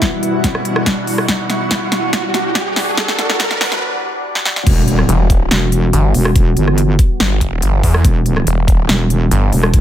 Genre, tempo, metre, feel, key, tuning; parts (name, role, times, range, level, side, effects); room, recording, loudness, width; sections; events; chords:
heavy wobble dubstep; 142 BPM; 4/4; half-time; E minor; A4 = 440 Hz
evolving wavetable pad; sustained chords; 0.0-9.8 s; B2 to A4; -21 LUFS; right 1 dB; phaser, built-in reverb, sidechain pumping
big-room dance drum kit; drums; 0.0-9.8 s; crash cymbal, hi-hat, rim click, snare drum; -18 LUFS; equal; overdrive
electronic kick drum; drums; 0.0-9.8 s; -14 LUFS; equal
riser and impact; sound effects; 0.1-6.4 s; -22 LUFS; equal
granular cloud pad; texture; 0.0-3.8 s; G3 to F#5; -23 LUFS; equal; built-in reverb, sidechain pumping
wobble bass; bass; 4.7-9.8 s; E1 to G1; -14 LUFS; equal; chorus, overdrive
snarling distorted saw bass; bass; 5.1-9.5 s; E1 to E2; -14 LUFS; equal; distortion, overdrive
digital ambience; high-pass filter; -12 LUFS; side -11 dB against mid
0.0-4.7 A section; 4.7-9.8 B section
build-up 0.0-4.7; drum fill 0.0-3.8, 4.3-4.7; filter sweep 0.0-4.7; riser 0.1-3.8; break 3.8-4.7; drop 4.7-9.8; impact 4.7-6.4
0.0 Emadd9